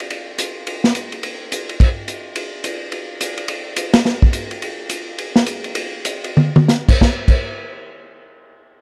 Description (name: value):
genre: jazz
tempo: 182-213 BPM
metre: 4/4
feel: swing 61% on 8ths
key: none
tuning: none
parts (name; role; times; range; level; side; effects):
- vintage drum kit; drums; 0.0-7.4 s; crash cymbal, hi-hat, kick drum, ride cymbal, snare drum, toms; -19 LUFS; equal; none
room: little or no reverb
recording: dry, close 1970s-style studio recording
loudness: -19 LUFS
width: mono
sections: 0.0-2.4 A section; 2.4-7.0 B section; 7.0-8.8 C section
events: slowing down 4.6-7.0; drum fill 6.4-6.7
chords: none